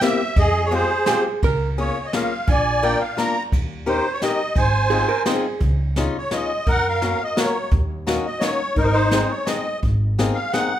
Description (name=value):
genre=musette waltz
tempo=172 BPM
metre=3/4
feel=swing 53% on 8ths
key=Ab major, Db major from 5.6 s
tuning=A4 = 439 Hz
part: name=musette accordion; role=melody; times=0.0-10.8 s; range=Eb4 to Bb5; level=-21 LUFS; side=right 1 dB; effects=none
part: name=fingerpicked swing-style acoustic guitar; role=accompaniment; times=0.0-10.7 s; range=Ab3 to Bb4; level=-24 LUFS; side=left 4 dB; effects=none
part: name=jazz brush drum kit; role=drums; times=0.0-10.6 s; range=hi-hat, kick drum, ride cymbal, snare drum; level=-24 LUFS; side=equal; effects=none
part: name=upright bass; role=bass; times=0.4-10.3 s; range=Ab1 to Gb2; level=-23 LUFS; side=equal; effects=none
part: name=hollow-body jazz guitar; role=second line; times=1.1-1.7, 4.9-5.6 s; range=Ab4 to C5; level=-24 LUFS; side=right 5 dB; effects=none
room=moderate recital hall reverb, RT60 1.3 s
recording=minimal, uncompressed stereo recording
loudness=-18 LUFS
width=side -11 dB against mid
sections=0.0-5.6 A section; 5.6-10.8 B section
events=none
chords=0.4 Fmadd9; 1.4 Db6; 2.5 Bb; 3.5 Eb7; 4.6 Ab6; 5.6 Dbadd9; 6.7 Gb; 7.7 Ebm7; 8.8 Ab; 9.8 Abadd9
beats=0.02 | 0.36 0.71 1.07 | 1.43 1.78 2.13 | 2.48 2.83 3.17 | 3.52 3.86 4.21 | 4.55 4.90 5.26 | 5.62 5.97 6.32 | 6.67 7.02 7.37 | 7.72 8.07 8.41 | 8.76 9.11 9.47 | 9.83 10.18 10.53